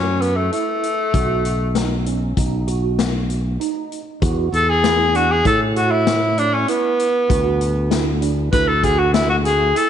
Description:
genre	progressive instrumental, band music in an uneven meter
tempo	98 BPM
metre	5/4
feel	straight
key	D lydian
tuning	A4 = 437 Hz
part	clear tenor saxophone	melody	0.0-9.9 s	A3 to B4	-18 LUFS	left 1 dB	none
part	modern bright fingered electric bass	bass	0.0-9.7 s	B1 to A2	-20 LUFS	equal	none
part	swinging big-band drum kit	drums	0.2-9.9 s	hi-hat, kick drum, snare drum	-23 LUFS	left 3 dB	none
part	tine electric piano	arpeggios	0.5-9.9 s	C#4 to F#4	-26 LUFS	right 11 dB	ensemble chorus, tape echo
room	moderate echo chamber reverb, RT60 2.1 s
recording	1960s-style stereo, nothing above 10.9 kHz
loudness	-16 LUFS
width	side -9 dB against mid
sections	0.0-9.9 A section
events	tenor saxophone solo 0.0-9.9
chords	0.0 Dadd9 (rootless); 1.1 B7; 4.2 Esus4; 7.3 D

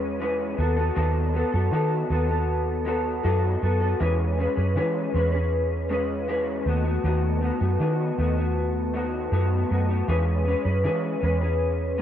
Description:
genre	indie pop, bedroom pop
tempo	79 BPM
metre	4/4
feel	straight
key	E major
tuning	A4 = 440 Hz
part	electric guitar through a small old amp	accompaniment	0.0-12.0 s	D#3 to B4	-25 LUFS	left 1 dB	analog chorus, warbly pitch drift
part	vintage muted fingered electric bass	bass	0.0-12.0 s	D#2 to E3	-25 LUFS	right 1 dB	none
room	digital ambience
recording	rough home demo mix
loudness	-22 LUFS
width	side -10 dB against mid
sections	0.0-12.0 A section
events	none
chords	0.0 E6; 0.6 B7/D#; 4.0 E6; 6.7 B7/D#; 10.1 E6

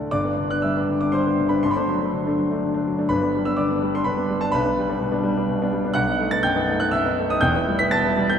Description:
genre	classical, romantic character piece for solo piano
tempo	106-129 BPM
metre	3/4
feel	rubato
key	G major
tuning	A4 = 441 Hz
part	clear concert grand piano	solo	0.0-8.4 s	E1 to B6	-19 LUFS	equal	none
room	wet church reverb, RT60 3.3 s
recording	none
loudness	-19 LUFS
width	side -8 dB against mid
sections	0.1-8.4 A section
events	none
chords	0.1 G; 1.6 D7/G; 3.1 G; 4.5 G/B; 6.0 B7; 7.4 Em

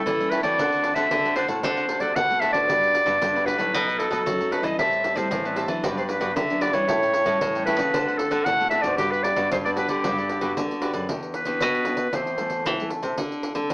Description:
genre	samba and choro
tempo	114 BPM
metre	4/4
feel	straight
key	G major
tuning	A4 = 440 Hz
part	bright clarinet	melody	0.0-12.9 s	G4 to F#5	-22 LUFS	equal	none
part	nylon-string guitar	accompaniment	0.0-13.7 s	F#2 to A4	-32 LUFS	left 1 dB	none
part	nylon-string guitar	bass	0.0-13.7 s	E2 to F#3	-28 LUFS	equal	none
part	pandeiro	percussion	0.1-13.7 s	none	-31 LUFS	right 1 dB	none
part	cavaquinho	accompaniment	0.3-11.1 s	D4 to A5	-29 LUFS	right 1 dB	none
room	moderate studio reverb, RT60 0.7 s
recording	small speaker sound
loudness	-20 LUFS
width	side -26 dB against mid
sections	0.0-11.1 A section; 11.1-13.7 B section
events	clarinet solo 11.1-13.7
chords	0.0 A7; 0.6 D7; 2.7 Gmaj7; 3.7 B7; 4.8 Am7; 5.8 Gmaj7; 6.9 A7; 7.9 D7; 9.0 Gmaj7; 11.1 Em7; 12.1 Am/E; 13.2 D7sus4

